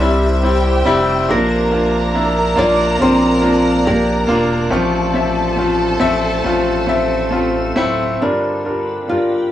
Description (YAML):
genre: pop ballad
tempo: 70 BPM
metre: 4/4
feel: straight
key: F major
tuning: A4 = 439 Hz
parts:
  - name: warm studio violin section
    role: second line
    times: 0.0-8.2 s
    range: E4 to Bb5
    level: -23 LUFS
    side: equal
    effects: cassette tape, plate reverb
  - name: clear grand piano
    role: accompaniment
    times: 0.0-9.5 s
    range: G2 to E5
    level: -17 LUFS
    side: left 1 dB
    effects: cassette tape, plate reverb
  - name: granular cloud pad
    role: sustained chords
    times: 0.0-9.5 s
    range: G4 to D6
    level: -25 LUFS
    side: right 1 dB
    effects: built-in reverb, cassette tape, plate reverb
  - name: saturated sub bass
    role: bass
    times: 0.0-8.2 s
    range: D1 to C2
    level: -21 LUFS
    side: equal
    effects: none
  - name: nylon-string guitar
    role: melody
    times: 1.3-9.5 s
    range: F3 to D5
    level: -18 LUFS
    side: equal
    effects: cassette tape, plate reverb
room: moderate booth ambience, RT60 0.2 s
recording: home recording on cassette, small room ambience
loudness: -13 LUFS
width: side -12 dB against mid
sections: 0.0-8.2 A section; 8.2-9.5 B section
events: none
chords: 0.0 C; 1.3 Bb; 4.7 F/A; 8.2 Gm7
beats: 0.43 | 1.29 2.15 3.00 3.86 | 4.72 5.58 6.45 7.32 | 8.20 9.07